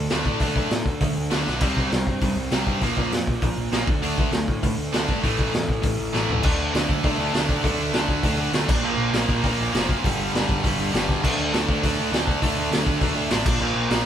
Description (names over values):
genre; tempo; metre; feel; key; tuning
punk rock; 200 BPM; 4/4; straight; D minor; A4 = 441 Hz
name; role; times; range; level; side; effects
overdriven electric guitar; riff; 0.0-14.1 s; G2 to D4; -28 LUFS; right 2 dB; none
fuzz picked electric bass; bass; 0.0-14.0 s; F1 to A2; -30 LUFS; equal; overdrive
distorted electric guitar; riff; 0.1-14.1 s; G2 to D4; -25 LUFS; equal; overdrive
raw garage drum kit; drums; 0.1-14.0 s; crash cymbal, hi-hat, kick drum, snare drum, toms; -24 LUFS; equal; none
room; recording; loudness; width
light reverb; band playing live in one room; -20 LUFS; side -9 dB against mid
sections
0.0-6.4 A section; 6.4-14.1 B section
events
drum fill 1.5, 6.1-6.4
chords
0.0 D5; 1.6 C5; 2.8 Bb5; 3.9 D5; 5.2 A5; 6.4 D5; 8.7 Bb5; 10.0 G5; 11.2 D5; 13.5 Bb5